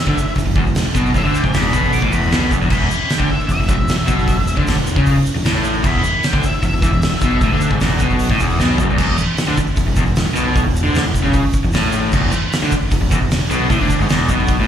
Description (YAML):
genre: garage rock duo or trio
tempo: 153 BPM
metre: 4/4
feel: straight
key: unclear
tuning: A4 = 440 Hz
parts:
  - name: octave-fuzz lead guitar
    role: melody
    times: 0.0-7.8 s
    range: E5 to D6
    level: -23 LUFS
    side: left 1 dB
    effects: distortion, slapback echo
  - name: crunchy overdriven guitar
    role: riff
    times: 0.1-14.7 s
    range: E2 to D3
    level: -18 LUFS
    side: equal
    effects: slapback echo
  - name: fuzz picked electric bass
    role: bass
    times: 0.1-14.7 s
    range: E1 to D2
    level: -21 LUFS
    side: equal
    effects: overdrive
  - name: oversized low-tuned drum kit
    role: drums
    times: 0.1-14.6 s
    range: crash cymbal, hi-hat, kick drum, snare drum, toms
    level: -18 LUFS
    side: equal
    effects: none
  - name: tube shaker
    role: percussion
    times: 0.2-14.6 s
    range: none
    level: -35 LUFS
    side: right 2 dB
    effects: none
room: small room ambience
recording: live gig heard through the venue's PA, club reverb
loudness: -14 LUFS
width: side -9 dB against mid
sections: 0.0-9.0 A section; 9.0-14.7 B section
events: lead electric guitar solo 0.0-9.0; drum fill 8.6-9.0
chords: 0.0 E5